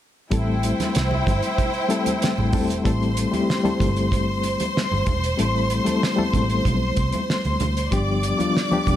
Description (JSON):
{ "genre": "lush 1970s-style soul", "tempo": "95 BPM", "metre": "4/4", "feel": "straight", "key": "A minor", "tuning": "A4 = 439 Hz", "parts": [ { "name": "clear studio string section", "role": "second line", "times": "0.3-9.0 s", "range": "E4 to D6", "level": "-26 LUFS", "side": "equal", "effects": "none" }, { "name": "reed electric piano", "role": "accompaniment", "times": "0.3-9.0 s", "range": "F3 to A4", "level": "-24 LUFS", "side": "left 3 dB", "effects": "fast tremolo" }, { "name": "vintage muted fingered electric bass", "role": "bass", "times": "0.3-9.0 s", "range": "E1 to D2", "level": "-24 LUFS", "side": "right 1 dB", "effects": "none" }, { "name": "cloth-damped thuddy drum kit", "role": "drums", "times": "0.3-9.0 s", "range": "hi-hat, kick drum, snare drum", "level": "-25 LUFS", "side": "right 1 dB", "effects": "none" }, { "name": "congas", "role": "percussion", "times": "0.6-9.0 s", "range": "none", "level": "-31 LUFS", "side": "right 4 dB", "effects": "none" } ], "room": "small room ambience", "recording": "none", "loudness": "-19 LUFS", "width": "side -11 dB against mid", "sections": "0.3-2.9 A section; 2.9-9.0 B section", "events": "none", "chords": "0.3 Am7; 7.9 G7" }